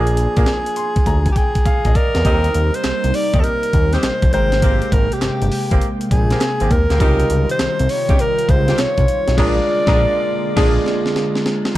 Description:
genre	R&B, new jack swing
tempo	101 BPM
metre	4/4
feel	swing 66% on 16ths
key	unclear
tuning	A4 = 441 Hz
part	bright alto saxophone	melody	0.0-11.1 s	G4 to D5	-20 LUFS	equal	none
part	bright grand piano	accompaniment	0.0-11.8 s	F3 to C6	-24 LUFS	equal	none
part	mellow horn section	stabs	0.0-11.8 s	Bb3 to Bb4	-27 LUFS	right 1 dB	none
part	fat analog bass	bass	0.0-10.8 s	G1 to Fb2	-18 LUFS	equal	none
part	breakbeat sampler-style drum kit	drums	0.1-11.8 s	crash cymbal, hi-hat, kick drum, snare drum	-18 LUFS	equal	none
part	phased analog pad	sustained chords	2.7-11.8 s	C3 to G5	-25 LUFS	equal	phaser, chorus
part	group handclap	percussion	2.8-9.0 s	none	-35 LUFS	right 8 dB	none
room	small room ambience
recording	dark, warm production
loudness	-14 LUFS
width	side -15 dB against mid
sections	0.0-2.2 A section; 2.2-11.8 B section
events	grand piano fill 0.5-2.2; drum fill 1.1-2.2, 10.6-11.8; band accent 9.4-11.8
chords	0.0 Bb7; 2.2 Eb6; 4.3 Abmaj9; 7.0 Dbmaj9#11; 9.4 Bb7

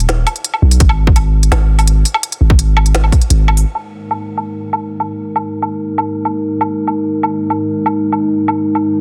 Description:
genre	half-time drum and bass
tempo	168 BPM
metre	4/4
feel	half-time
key	unclear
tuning	A4 = 440 Hz
part	long sustained 808-style bass	bass	0.0-3.6 s	D#1 to B1	-13 LUFS	equal	none
part	organic electronic drum kit	drums	0.0-8.8 s	hi-hat, snare drum, woodblock	-20 LUFS	equal	low-pass filter on hats, small room ambience, low-pass filter on perc, soft clipping on snare, low-pass filter on snare
part	electronic kick drum	drums	0.8-3.2 s	none	-13 LUFS	equal	small room ambience
part	dark analog pad	sustained chords	3.7-9.0 s	G#3 to A#4	-19 LUFS	equal	chorus, sidechain pumping
room	digital ambience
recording	dense, heavily limited modern master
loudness	-14 LUFS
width	mono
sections	0.0-3.7 A section; 3.7-9.0 B section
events	none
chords	0.0 N.C.; 3.7 G#5

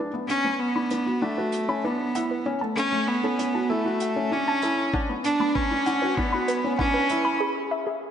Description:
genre	piano and strings electronica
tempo	97 BPM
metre	4/4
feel	straight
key	B minor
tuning	A4 = 440 Hz
part	warbly dusty pluck	arpeggios	0.0-7.9 s	G#4 to B5	-31 LUFS	equal	chorus, sidechain pumping, tape echo
part	felt-muted upright piano	riff	0.0-7.4 s	A3 to F#4	-29 LUFS	left 1 dB	tape echo
part	round analog bass	bass	0.0-7.4 s	F#1 to B1	-52 LUFS	equal	none
part	warm cello	melody	0.3-7.4 s	A3 to D4	-24 LUFS	right 1 dB	tape echo
part	hi-hat	drums	0.3-7.2 s	none	-38 LUFS	right 4 dB	high-pass filter on hats, high-pass filter on room
part	electronic kick drum	drums	4.9-6.9 s	none	-29 LUFS	equal	none
room	wet lush hall reverb, RT60 1.8 s, small room ambience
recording	nothing above 10.7 kHz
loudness	-22 LUFS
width	side -9 dB against mid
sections	0.0-8.1 A section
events	build-up 0.0-8.1; break 7.4-8.1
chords	0.0 Bm; 2.5 F#m; 4.9 Bm; 7.4 E

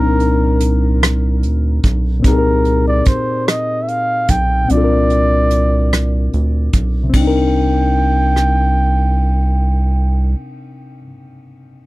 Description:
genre	slow six-eight R&B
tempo	49 BPM (dotted quarters)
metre	6/8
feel	straight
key	C minor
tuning	A4 = 440 Hz
part	warm flugelhorn	melody	0.0-10.4 s	Bb4 to G5	-20 LUFS	right 1 dB	tape echo
part	barky reed electric piano	accompaniment	0.0-11.9 s	Bb2 to Bb4	-19 LUFS	left 3 dB	none
part	rubbery square bass	bass	0.0-10.3 s	B1 to D2	-15 LUFS	equal	none
part	soft brush drum kit	drums	0.2-8.6 s	hi-hat, kick drum, ride cymbal, rim click	-16 LUFS	right 1 dB	none
room	little or no reverb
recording	dry, close 1970s-style studio recording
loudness	-12 LUFS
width	side -18 dB against mid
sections	0.0-7.1 A section; 7.1-9.6 B section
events	none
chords	0.0 Cm9; 2.2 Abmaj9; 4.7 Bbadd9; 7.1 Cm9

